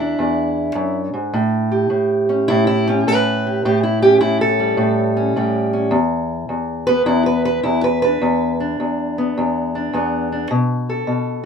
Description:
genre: acoustic country blues, solo or duo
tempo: 105 BPM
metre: 4/4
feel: swing 66% on 8ths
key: unclear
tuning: A4 = 441 Hz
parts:
  - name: fingerpicked steel-string acoustic guitar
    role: solo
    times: 0.0-11.5 s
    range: E2 to B4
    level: -16 LUFS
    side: equal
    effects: none
room: light reverb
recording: minimal, uncompressed stereo recording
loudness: -16 LUFS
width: side -6 dB against mid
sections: 0.0-11.5 A section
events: steel-string acoustic guitar solo 0.0-11.5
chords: 0.0 E7; 1.3 A7; 5.9 E5; 10.5 B5

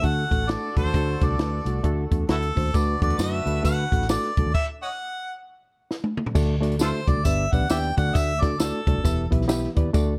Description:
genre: uptempo 1960s-style soul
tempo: 133 BPM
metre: 4/4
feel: swing 61% on 8ths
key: unclear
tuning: A4 = 439 Hz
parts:
  - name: warm harmonica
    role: melody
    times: 0.0-9.3 s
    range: E4 to G5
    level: -30 LUFS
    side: equal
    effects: slapback echo
  - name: warm horn section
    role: second line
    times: 0.0-4.3 s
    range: D4 to B4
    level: -38 LUFS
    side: equal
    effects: none
  - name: reed electric piano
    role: accompaniment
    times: 0.0-10.2 s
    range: G2 to E5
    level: -30 LUFS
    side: equal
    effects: none
  - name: vintage muted fingered electric bass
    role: bass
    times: 0.0-10.2 s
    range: E1 to D3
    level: -29 LUFS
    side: equal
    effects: none
  - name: compact cocktail drum kit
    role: drums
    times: 0.0-10.1 s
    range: crash cymbal, hi-hat, kick drum, snare drum, toms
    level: -27 LUFS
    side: equal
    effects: none
  - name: tambourine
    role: percussion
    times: 2.8-10.1 s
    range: none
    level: -40 LUFS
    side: equal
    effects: none
room: little or no reverb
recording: dark, warm production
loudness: -24 LUFS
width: mono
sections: 0.0-6.3 A section; 6.3-10.2 B section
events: stop 4.5-6.3; drum fill 5.9-6.3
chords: 0.0 D; 7.2 G; 7.9 D; 9.0 Em

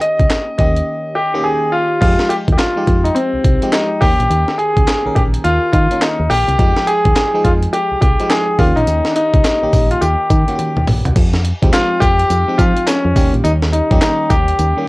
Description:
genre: R&B, new jack swing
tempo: 105 BPM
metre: 4/4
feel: swing 62% on 16ths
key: F minor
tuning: A4 = 442 Hz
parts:
  - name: warm concert grand piano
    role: melody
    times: 0.0-14.9 s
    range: C4 to Eb5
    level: -16 LUFS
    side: left 1 dB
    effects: cassette tape
  - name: FM electric piano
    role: accompaniment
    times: 0.0-14.9 s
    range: Eb3 to Bb4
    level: -23 LUFS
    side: right 1 dB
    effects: chorus, cassette tape
  - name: breakbeat sampler-style drum kit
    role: drums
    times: 0.0-14.8 s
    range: crash cymbal, handclaps, hi-hat, kick drum, snare drum, tambourine, toms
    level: -16 LUFS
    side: equal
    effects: cassette tape
  - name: solid FM bass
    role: bass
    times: 0.2-14.7 s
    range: Bb1 to F3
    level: -17 LUFS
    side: equal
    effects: none
room: light reverb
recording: home recording on cassette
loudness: -12 LUFS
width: side -21 dB against mid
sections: 0.0-2.0 A section; 2.0-11.2 B section; 11.2-14.9 C section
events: break 0.9-2.0; drum fill 10.6-11.2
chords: 0.0 Eb7; 2.0 Fm9; 4.0 Eb7; 6.6 Fm9; 8.6 Eb7; 11.2 Fm9; 13.2 Eb7

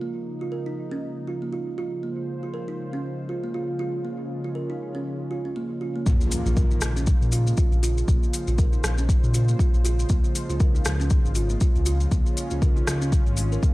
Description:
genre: afro house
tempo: 119 BPM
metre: 4/4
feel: swing 58% on 16ths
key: Bb minor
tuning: A4 = 442 Hz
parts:
  - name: warm analog pad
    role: sustained chords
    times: 0.0-13.7 s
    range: Db3 to C5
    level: -32 LUFS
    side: left 1 dB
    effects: wide subtle chorus, sidechain pumping
  - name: kalimba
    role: arpeggios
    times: 0.0-13.7 s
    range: Ab3 to Bb4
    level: -31 LUFS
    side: right 3 dB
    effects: sidechain pumping, analog delay
  - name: smooth synth bass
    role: bass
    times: 6.1-13.6 s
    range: Ab1 to Bb2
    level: -24 LUFS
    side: equal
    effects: sidechain pumping
  - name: electronic kick drum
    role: drums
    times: 6.1-13.7 s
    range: none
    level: -21 LUFS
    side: equal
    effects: none
  - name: maracas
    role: percussion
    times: 6.1-13.7 s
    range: none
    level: -36 LUFS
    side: left 4 dB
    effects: none
  - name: impact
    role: sound effects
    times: 6.1-8.1 s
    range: none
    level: -32 LUFS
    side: left 1 dB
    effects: none
  - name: afro-pop drum kit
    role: drums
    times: 6.3-13.5 s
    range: hi-hat, rim click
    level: -30 LUFS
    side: left 1 dB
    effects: low-pass filter on hats, low-pass filter on snare, low-pass filter on room
room: little or no reverb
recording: dry, gritty hardware recording, transformer saturation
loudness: -22 LUFS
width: side -19 dB against mid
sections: 0.0-6.1 A section; 6.1-13.7 B section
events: filter sweep on analog synth pad 0.0-6.1; drop 6.1-13.7; impact 6.1-8.1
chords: 0.0 Bbm7; 2.0 Dbmaj7; 6.1 Bbm7; 10.1 Dbmaj7

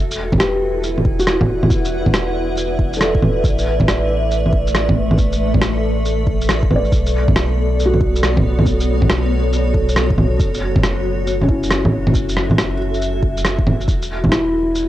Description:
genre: future garage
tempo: 138 BPM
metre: 4/4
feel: swing 65% on 16ths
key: unclear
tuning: A4 = 438 Hz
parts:
  - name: granular cloud pad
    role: sustained chords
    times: 0.0-14.9 s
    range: A3 to G5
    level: -22 LUFS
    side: equal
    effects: built-in reverb, vintage 12-bit sampler grit, sidechain pumping, cassette tape
  - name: warm sub bass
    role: bass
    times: 0.0-14.9 s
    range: E1 to B1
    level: -21 LUFS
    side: equal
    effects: none
  - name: electronic shaker, bongos and rim click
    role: drums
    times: 0.1-14.9 s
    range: none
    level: -18 LUFS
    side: right 1 dB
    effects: cassette tape
  - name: electronic kick drum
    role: drums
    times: 0.3-14.3 s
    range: none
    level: -20 LUFS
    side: equal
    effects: overdrive, cassette tape
  - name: felt-muted upright piano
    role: accompaniment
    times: 0.4-14.9 s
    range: C#4 to D5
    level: -23 LUFS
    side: equal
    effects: sidechain pumping, cassette tape, analog delay
room: little or no reverb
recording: home recording on cassette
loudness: -14 LUFS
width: side -14 dB against mid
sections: 0.0-14.9 A section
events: none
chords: 0.0 Em7; 3.4 Asus24; 6.9 Bm7; 10.4 F#m7; 13.9 Em7

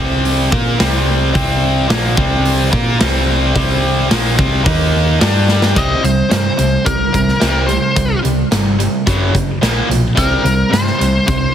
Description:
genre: hard rock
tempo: 109 BPM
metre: 4/4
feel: straight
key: C minor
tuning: A4 = 445 Hz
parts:
  - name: distorted electric guitar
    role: riff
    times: 0.0-11.5 s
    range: F#2 to Bb4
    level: -16 LUFS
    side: right 1 dB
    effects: overdrive
  - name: hollow-body short-scale picked electric bass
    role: bass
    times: 0.0-11.5 s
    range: F#1 to Bb2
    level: -17 LUFS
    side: equal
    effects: none
  - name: big rock drum kit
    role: drums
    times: 0.2-11.4 s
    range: hi-hat, kick drum, snare drum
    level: -18 LUFS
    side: equal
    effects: none
  - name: nasal lead guitar with a parked wah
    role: melody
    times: 5.8-11.5 s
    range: Bb4 to Eb5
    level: -18 LUFS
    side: left 2 dB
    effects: overdrive, digital delay
room: light reverb, small room ambience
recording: heavily compressed radio sound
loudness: -12 LUFS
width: side -9 dB against mid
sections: 0.0-5.8 A section; 5.8-11.5 B section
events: drum fill 5.5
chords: 0.0 C5; 4.7 Eb5; 5.2 G5; 5.8 C5; 9.1 F#5; 9.6 Bb5; 10.2 C5

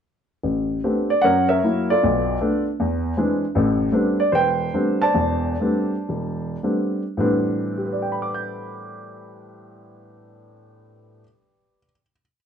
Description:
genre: solo jazz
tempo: 104-157 BPM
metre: 4/4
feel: swing 66% on 8ths, rubato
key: A minor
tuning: A4 = 440 Hz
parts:
  - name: dark grand piano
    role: solo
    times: 0.4-12.3 s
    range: E1 to G6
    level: -19 LUFS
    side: equal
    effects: none
room: wet club reverb, RT60 0.6 s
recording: nothing above 10.3 kHz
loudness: -19 LUFS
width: side -8 dB against mid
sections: 0.4-7.2 A section; 7.2-11.7 final chord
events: slowing down 3.5-7.2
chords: 0.4 Am11; 1.2 F#7; 2.0 Bm7b5; 2.8 Eaug7; 3.5 Am11

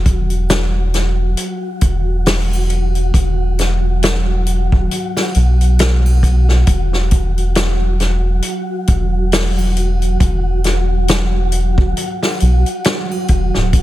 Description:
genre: trip hop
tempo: 68 BPM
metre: 4/4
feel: swing 57% on 16ths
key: unclear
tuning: A4 = 439 Hz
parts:
  - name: round analog bass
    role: bass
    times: 0.0-13.8 s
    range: D1 to B1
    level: -15 LUFS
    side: equal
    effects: none
  - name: wind-like tuned noise texture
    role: texture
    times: 0.0-13.8 s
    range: F#3 to F#4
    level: -23 LUFS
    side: right 1 dB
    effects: built-in reverb
  - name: vintage drum kit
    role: drums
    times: 0.1-13.8 s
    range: hi-hat, kick drum, snare drum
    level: -17 LUFS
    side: equal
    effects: none
  - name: tube shaker and triangle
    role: percussion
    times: 0.5-13.3 s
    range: none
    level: -36 LUFS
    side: right 3 dB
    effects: none
room: little or no reverb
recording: none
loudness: -13 LUFS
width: side -15 dB against mid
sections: 0.0-13.8 A section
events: none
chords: 0.0 B5/E; 6.7 Esus2

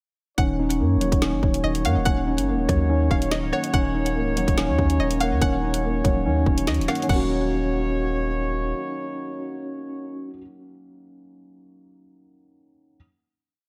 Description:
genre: hip hop, drill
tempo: 143 BPM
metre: 4/4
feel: half-time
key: Eb minor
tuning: A4 = 440 Hz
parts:
  - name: string-like resonator pluck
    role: second line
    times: 0.4-8.3 s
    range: Db5 to Gb5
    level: -33 LUFS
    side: equal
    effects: chorus, tape echo
  - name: felt-muted upright piano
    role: accompaniment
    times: 0.4-13.0 s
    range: Eb3 to Db4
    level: -31 LUFS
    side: equal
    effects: low-pass filter
  - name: mellow brass ensemble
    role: sustained chords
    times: 0.4-10.4 s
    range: Bb3 to Db5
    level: -35 LUFS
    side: equal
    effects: none
  - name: mellow tine electric piano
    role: arpeggios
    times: 0.4-10.4 s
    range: Db4 to Gb5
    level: -29 LUFS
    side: equal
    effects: low-pass filter, tape echo
  - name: long sustained 808-style bass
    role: bass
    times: 0.4-8.7 s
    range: Db1 to Gb2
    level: -27 LUFS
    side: equal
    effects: none
  - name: drill drum kit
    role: drums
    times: 0.4-7.2 s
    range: crash cymbal, hi-hat, kick drum, rim click, snare drum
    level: -26 LUFS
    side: equal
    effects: none
room: light reverb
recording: none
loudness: -23 LUFS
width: mono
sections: 0.4-7.1 hook; 7.1-10.4 final chord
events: none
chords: 0.4 Ebm7

